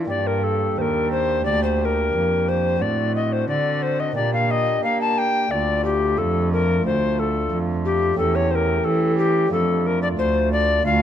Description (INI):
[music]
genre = classical, baroque-style sonata movement with continuo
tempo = 89 BPM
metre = 4/4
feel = rubato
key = G minor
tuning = A4 = 439 Hz
[part]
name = chamber organ, principal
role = accompaniment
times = 0.0-11.0 s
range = D2 to G4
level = -25 LUFS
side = right 2 dB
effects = none
[part]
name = rich cello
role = bass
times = 0.0-11.0 s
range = D2 to Bb3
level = -24 LUFS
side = right 2 dB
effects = none
[part]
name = mellow tenor recorder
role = melody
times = 0.1-11.0 s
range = G4 to A5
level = -21 LUFS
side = left 4 dB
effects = none
[sound]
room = moderate recital hall reverb, RT60 1.6 s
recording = none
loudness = -18 LUFS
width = side -10 dB against mid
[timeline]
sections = 0.1-11.0 A section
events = none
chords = 0.1 Gm; 2.8 D7/A; 4.2 Gm/Bb; 5.5 Dm; 8.2 A7/E; 9.5 Dm/F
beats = | 0.11 0.79 1.47 2.15 | 2.82 3.50 4.17 4.84 | 5.52 6.19 6.86 7.52 | 8.18 8.85 9.52 10.19 | 10.86